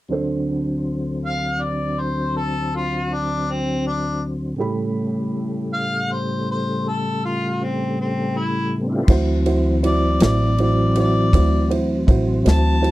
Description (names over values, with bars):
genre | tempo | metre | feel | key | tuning
slow blues | 53 BPM (dotted quarters) | 12/8 | straight | D mixolydian | A4 = 440 Hz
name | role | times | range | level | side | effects
dark upright piano | accompaniment | 0.1-12.9 s | A2 to B5 | -26 LUFS | right 4 dB | none
tonewheel organ | sustained chords | 0.1-12.9 s | D2 to C5 | -23 LUFS | left 1 dB | slow rotary speaker, chorus vibrato
mellow harmonica | melody | 1.3-12.9 s | C4 to A5 | -24 LUFS | left 2 dB | overdrive, slapback echo
upright bass | bass | 9.1-12.9 s | A1 to D2 | -18 LUFS | equal | none
natural country drum kit | drums | 9.1-12.9 s | crash cymbal, kick drum, ride cymbal, snare drum | -16 LUFS | equal | none
room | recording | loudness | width
little or no reverb | dry, close 1970s-style studio recording | -18 LUFS | side -17 dB against mid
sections
0.1-9.1 A section; 9.1-12.9 B section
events
harmonica solo 9.1-12.9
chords
0.1 D7; 4.6 A7; 9.1 D7